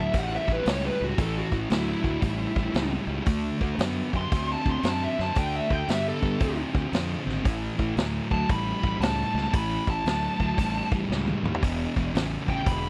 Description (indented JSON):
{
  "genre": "blues rock power trio and southern rock",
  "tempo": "115 BPM",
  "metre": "4/4",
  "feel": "swing 65% on 8ths",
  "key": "unclear",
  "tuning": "A4 = 440 Hz",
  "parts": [
    { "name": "bluesy overdriven lead guitar", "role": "melody", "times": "0.0-12.9 s", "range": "E4 to C6", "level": "-32 LUFS", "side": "equal", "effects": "distortion, slapback echo" },
    { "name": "thick fuzz guitar", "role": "riff", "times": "0.0-12.9 s", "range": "E2 to C4", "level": "-32 LUFS", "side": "equal", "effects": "distortion" },
    { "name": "fuzz fingered electric bass", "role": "bass", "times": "0.0-12.9 s", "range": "E1 to G2", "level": "-33 LUFS", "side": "equal", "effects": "overdrive" },
    { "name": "vintage drum kit", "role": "drums", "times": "0.1-12.8 s", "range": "hi-hat, kick drum, snare drum, toms", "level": "-30 LUFS", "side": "equal", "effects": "none" }
  ],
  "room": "little or no reverb",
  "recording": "dry, close 1970s-style studio recording",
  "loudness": "-27 LUFS",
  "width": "mono",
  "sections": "0.0-12.9 A section",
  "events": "lead electric guitar solo 0.0-12.9; drum fill 11.1-11.6",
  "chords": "0.0 A; 3.3 D; 5.4 D7(no3); 7.5 A; 11.6 E5"
}